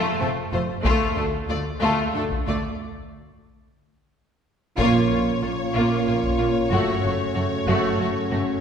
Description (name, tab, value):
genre	cinematic, epic orchestral film score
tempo	62 BPM (dotted quarters)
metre	6/8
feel	straight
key	unclear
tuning	A4 = 441 Hz
part	clear symphonic violin section	melody	0.0-8.6 s	F4 to D5	-29 LUFS	left 3 dB	none
part	warm symphonic violin section	second line	0.0-8.4 s	A3 to Gb4	-28 LUFS	left 3 dB	none
part	rich symphonic viola section	accompaniment	0.0-8.4 s	A3 to Bb3	-28 LUFS	right 1 dB	none
part	warm symphonic cello section	bass	0.2-8.4 s	D2 to Bb2	-28 LUFS	right 2 dB	none
part	warm symphonic double bass section	bass	0.2-8.4 s	F1 to D2	-29 LUFS	right 2 dB	none
part	taiko ensemble	drums	0.8-6.5 s	none	-29 LUFS	left 1 dB	none
part	warm French horn section	sustained chords	4.8-8.6 s	Db4 to Gb4	-27 LUFS	left 2 dB	none
part	warm trombone section	sustained chords	4.8-8.6 s	Bb2 to Bb3	-28 LUFS	right 4 dB	none
part	timpani	percussion	4.8-5.7 s	Bb2	-35 LUFS	equal	none
room	wet scoring stage reverb, RT60 1.6 s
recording	heard from further back in the room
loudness	-20 LUFS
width	side -7 dB against mid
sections	0.0-4.8 A section; 4.8-8.6 B section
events	break 2.8-4.8; band accent 4.8-5.4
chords	0.0 F; 0.8 Dm; 2.8 N.C.; 4.8 Bbm; 6.7 Gbm